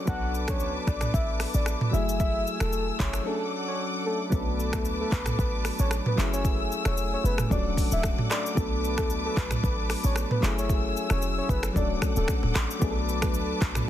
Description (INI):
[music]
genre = afrobeats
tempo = 113 BPM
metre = 4/4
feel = swing 55% on 16ths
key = unclear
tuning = A4 = 441 Hz
[part]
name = soft electric-piano-like synth keys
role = accompaniment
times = 0.0-13.9 s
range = E#3 to A4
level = -32 LUFS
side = left 2 dB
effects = chorus
[part]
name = warm studio string section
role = sustained chords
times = 0.0-13.9 s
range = A3 to E6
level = -34 LUFS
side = left 1 dB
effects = none
[part]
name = soft octave-layered synth lead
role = melody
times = 0.1-12.3 s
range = A4 to F#5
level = -33 LUFS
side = left 1 dB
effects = chorus, ping-pong delay
[part]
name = short 808-style bass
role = bass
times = 0.1-13.8 s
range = D1 to C#2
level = -29 LUFS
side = equal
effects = none
[part]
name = afro-pop drum kit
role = drums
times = 0.1-13.9 s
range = finger snaps, handclaps, hi-hat, kick drum, rim click, shaker, toms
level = -29 LUFS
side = equal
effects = soft clipping on snare
[sound]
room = little or no reverb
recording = dense, heavily limited modern master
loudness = -24 LUFS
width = side -12 dB against mid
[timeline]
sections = 0.0-4.3 A section; 4.3-13.9 B section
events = break 3.3-4.3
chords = 0.1 Bm7; 1.9 F#m9; 3.3 Dmaj7; 4.3 Bm7; 6.2 F#m9; 7.5 Dmaj7; 8.6 Bm7; 10.4 F#m9; 11.8 Dmaj7; 12.8 Bm7